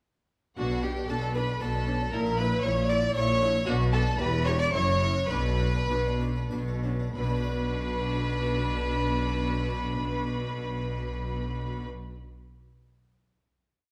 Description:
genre	classical, baroque-style concerto movement with solo episodes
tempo	91-117 BPM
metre	3/4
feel	straight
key	B minor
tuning	A4 = 435 Hz
part	rich chamber violin section	melody	0.6-11.8 s	F#5 to D6	-39 LUFS	equal	none
part	rich violin	melody	0.6-11.8 s	F#4 to D5	-35 LUFS	equal	none
part	rich chamber violin section	second line	0.6-11.8 s	F#4 to D5	-38 LUFS	equal	none
part	harpsichord	accompaniment	0.6-12.2 s	E2 to D5	-44 LUFS	equal	none
part	rich chamber viola section	accompaniment	0.6-11.9 s	D4 to G4	-41 LUFS	equal	none
part	rich chamber double bass section	bass	0.6-11.8 s	E1 to B1	-33 LUFS	equal	none
part	rich studio cello section	bass	0.6-11.8 s	E2 to B2	-35 LUFS	equal	none
room	moderate recital hall reverb, RT60 1.6 s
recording	dark, warm production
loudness	-28 LUFS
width	mono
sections	0.6-7.2 ritornello; 7.2-11.1 final chord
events	slowing down 2.9-7.2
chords	0.6 Bm; 2.1 F#7/A#; 3.7 Bm; 4.2 C#dim/E; 4.7 F#7; 5.3 Bm

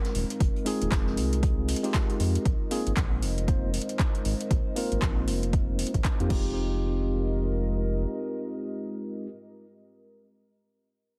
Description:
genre	deep house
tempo	117 BPM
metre	4/4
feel	swing 60% on 16ths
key	F minor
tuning	A4 = 442 Hz
part	dark analog pad	sustained chords	0.0-9.3 s	Ab3 to Eb5	-41 LUFS	equal	chorus, sidechain pumping
part	deep house drum kit	drums	0.0-6.4 s	crash cymbal, handclaps, hi-hat	-38 LUFS	equal	overdrive
part	jazz brush drum kit	drums	0.0-2.3 s	hi-hat, snare drum	-50 LUFS	equal	none
part	warbly tape-like pad	texture	0.0-9.8 s	C4 to Eb5	-41 LUFS	equal	chorus, built-in reverb, sidechain pumping
part	round analog bass	bass	0.1-8.1 s	Eb1 to F2	-31 LUFS	equal	sidechain pumping
part	electronic kick drum	drums	0.4-6.4 s	none	-29 LUFS	equal	overdrive
part	bright tine electric piano	stabs	0.7-9.3 s	Ab3 to C5	-34 LUFS	equal	sidechain pumping, low-pass filter, digital delay
part	congas	percussion	0.9-5.1 s	none	barely audible	none	none
room	little or no reverb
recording	heavily compressed radio sound, multiband compression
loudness	-28 LUFS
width	mono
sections	0.0-6.6 A section; 6.6-10.7 B section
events	filter sweep on tine electric piano 0.0-6.6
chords	0.0 Fm9; 2.5 Bb9sus4; 6.3 Fm9

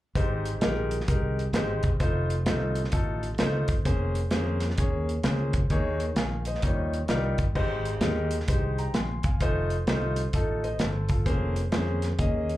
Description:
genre	uptempo gospel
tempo	130 BPM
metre	4/4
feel	swing 64% on 8ths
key	Ab major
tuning	A4 = 440 Hz
part	warm concert grand piano	accompaniment	0.2-12.5 s	Ab2 to C6	-30 LUFS	left 1 dB	slapback echo
part	modern bright fingered electric bass	bass	0.2-12.6 s	Fb1 to F2	-28 LUFS	equal	none
part	modern studio drum kit	drums	0.2-12.6 s	crash cymbal, hi-hat, kick drum, snare drum	-29 LUFS	equal	none
room	light reverb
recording	live gig heard through the venue's PA, club ambience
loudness	-24 LUFS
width	side -15 dB against mid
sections	0.2-7.6 A section; 7.6-12.6 B section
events	none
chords	0.2 Abmaj7; 2.0 F7; 3.9 Bbm9/F; 5.7 Eb7sus4; 6.6 Eb9; 7.6 Abmaj7; 9.4 F7; 11.3 Bbm9/F

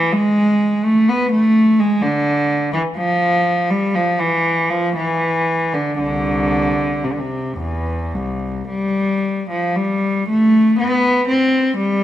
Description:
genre	classical, baroque-style suite movement for unaccompanied cello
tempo	53-64 BPM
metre	4/4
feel	rubato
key	C major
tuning	A4 = 440 Hz
part	rich cello	solo	0.0-12.0 s	C2 to C4	-15 LUFS	equal	none
room	light reverb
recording	none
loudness	-15 LUFS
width	side -12 dB against mid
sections	0.0-10.3 A section; 10.3-12.0 B section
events	none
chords	none

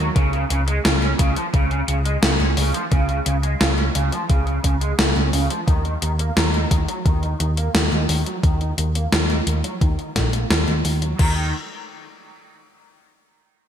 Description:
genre	synthwave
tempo	87 BPM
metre	4/4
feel	straight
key	Eb minor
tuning	A4 = 438 Hz
part	raw garage guitar	riff	0.0-11.5 s	Db3 to Eb4	-26 LUFS	right 1 dB	overdrive, ensemble chorus, low-pass filter, ping-pong delay
part	hollow-body short-scale picked electric bass	bass	0.0-11.5 s	Bb1 to Eb2	-21 LUFS	equal	none
part	electronic kick drum	drums	0.2-11.3 s	none	-19 LUFS	equal	overdrive
part	gated 80s digital drum machine	drums	0.2-11.3 s	crash cymbal, hi-hat, snare drum	-22 LUFS	equal	gated reverb, gated reverb snare, overdrive
room	light reverb, digital ambience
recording	bright 1980s-style digital production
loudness	-18 LUFS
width	side -9 dB against mid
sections	0.0-11.2 A section; 11.2-13.7 B section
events	filter sweep on overdriven electric guitar 0.0-11.2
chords	none

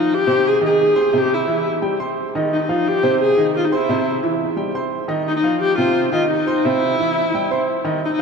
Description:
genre	latin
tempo	174 BPM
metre	4/4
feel	straight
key	F minor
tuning	A4 = 440 Hz
part	dark viola	melody	0.0-8.2 s	Eb4 to Ab4	-18 LUFS	left 2 dB	none
part	warm upright piano	accompaniment	0.0-8.2 s	C3 to C6	-20 LUFS	right 2 dB	none
room	wet cathedral reverb, RT60 5.8 s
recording	in a vast, echoing space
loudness	-16 LUFS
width	side -5 dB against mid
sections	0.0-8.0 A section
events	none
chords	0.0 Fm7; 1.1 C; 2.5 Fm7; 3.9 C; 5.3 F5; 6.6 C

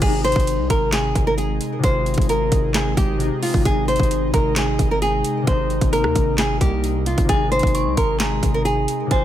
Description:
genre	hip hop, trap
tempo	132 BPM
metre	4/4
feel	half-time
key	Ab major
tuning	A4 = 436 Hz
part	nylon-string guitar	melody	0.0-9.2 s	F4 to C5	-22 LUFS	right 1 dB	digital delay
part	concert harp	accompaniment	0.0-9.2 s	C3 to F4	-26 LUFS	left 5 dB	none
part	airy breathy pad	sustained chords	0.0-9.2 s	C3 to Eb4	-28 LUFS	right 1 dB	chorus
part	hard-hitting 808-style bass	bass	0.0-9.2 s	Ab1 to Eb2	-24 LUFS	equal	none
part	trap drum kit	drums	0.0-9.2 s	crash cymbal, handclaps, hi-hat, kick drum, rim click, snare drum	-21 LUFS	equal	none
part	dark detuned synth bell	second line	7.3-9.2 s	Ab5 to Db6	-28 LUFS	right 2 dB	chorus, phaser, digital delay
room	little or no reverb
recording	none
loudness	-17 LUFS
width	side -11 dB against mid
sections	0.0-9.2 A section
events	none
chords	0.0 Ab

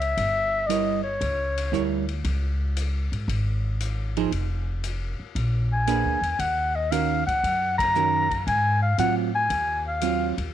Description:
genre	jazz, small-group swing and bop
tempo	116 BPM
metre	4/4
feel	swing 69% on 8ths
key	unclear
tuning	A4 = 440 Hz
part	mellow clarinet	melody	0.0-2.0, 5.7-10.3 s	Db5 to Bb5	-24 LUFS	left 2 dB	none
part	upright bass	bass	0.0-10.5 s	F1 to A2	-27 LUFS	equal	none
part	swinging big-band drum kit	drums	0.0-10.4 s	hi-hat, kick drum, ride cymbal	-36 LUFS	left 6 dB	none
part	hollow-body jazz guitar	accompaniment	0.7-10.3 s	Eb3 to Db5	-27 LUFS	right 12 dB	none
room	light reverb, studio reverb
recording	1960s-style stereo with parts hard left and right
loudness	-22 LUFS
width	side -11 dB against mid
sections	0.0-10.5 A section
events	band accent 7.7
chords	0.2 Gdim7; 2.2 Db5; 4.3 N.C.; 5.3 Bb7b9; 6.4 Ebm7; 8.5 Ab6

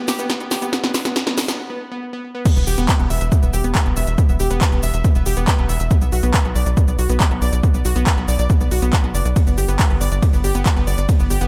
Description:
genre	uplifting trance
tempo	139 BPM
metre	4/4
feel	straight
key	unclear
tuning	A4 = 439 Hz
part	analog pluck	arpeggios	0.0-11.5 s	B3 to E5	-27 LUFS	equal	chorus, sidechain pumping, delay
part	tight sequencer bass	bass	0.0-11.5 s	E1 to B1	-22 LUFS	equal	tube saturation, sidechain pumping, high-pass filter
part	big-room dance drum kit	drums	0.1-11.5 s	crash cymbal, handclaps, hi-hat, ride cymbal, shaker, snare drum	-26 LUFS	equal	sidechain pumping on hats, sidechain pumping on perc, sidechain pumping on cymbals
part	electronic kick drum	drums	2.5-11.2 s	none	-18 LUFS	equal	overdrive
room	light reverb, digital ambience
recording	none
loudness	-18 LUFS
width	mono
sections	0.0-2.5 A section; 2.5-11.5 B section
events	build-up 0.0-2.5; drum fill 0.0-1.6; break 1.6-2.5; drop 2.5-11.5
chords	0.0 Asus2; 2.5 E5; 5.9 Bm; 9.4 G

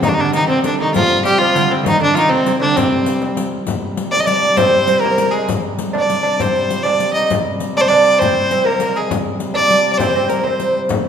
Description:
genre	medieval dance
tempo	132 BPM (dotted quarters)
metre	6/8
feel	straight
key	C minor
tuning	A4 = 440 Hz
part	warm fiddle	melody	0.0-10.8 s	C4 to Eb5	-16 LUFS	equal	none
part	lute	second line	0.0-10.8 s	C3 to Eb4	-18 LUFS	right 3 dB	none
part	hand-pumped harmonium	drone	0.0-11.1 s	C3 to G3	-26 LUFS	equal	none
part	frame drum	percussion	0.0-11.1 s	none	-24 LUFS	left 4 dB	none
part	riq	percussion	0.0-11.0 s	none	-25 LUFS	left 4 dB	none
room	wet scoring stage reverb, RT60 1.7 s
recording	minimal, uncompressed stereo recording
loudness	-13 LUFS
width	side -8 dB against mid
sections	0.0-3.7 A section; 3.7-10.9 B section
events	none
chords	none

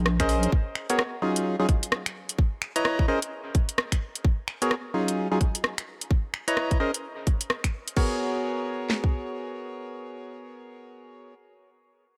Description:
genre	UK garage, two-step garage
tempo	129 BPM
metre	4/4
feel	swing 61% on 16ths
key	G# dorian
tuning	A4 = 443 Hz
part	deep soft wobble bass	bass	0.0-0.5 s	A#1	-26 LUFS	equal	chorus, tube saturation
part	garage drum kit	drums	0.1-8.1 s	crash cymbal, finger snaps, hi-hat, rim click	-31 LUFS	equal	none
part	percussive organ stab	stabs	0.2-11.3 s	F#3 to A#5	-31 LUFS	equal	chorus, dub echo
part	garage drum kit	drums	0.2-9.1 s	kick drum, snare drum	-26 LUFS	equal	none
room	light reverb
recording	none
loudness	-27 LUFS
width	mono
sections	0.0-8.0 A section; 8.0-11.7 B section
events	none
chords	0.0 A#m11; 0.5 G#m11; 1.2 D#m11; 2.4 C#m9; 3.1 A#m11; 4.2 G#m11; 4.9 D#m11; 6.1 C#m9; 6.8 A#m11; 8.0 G#m11

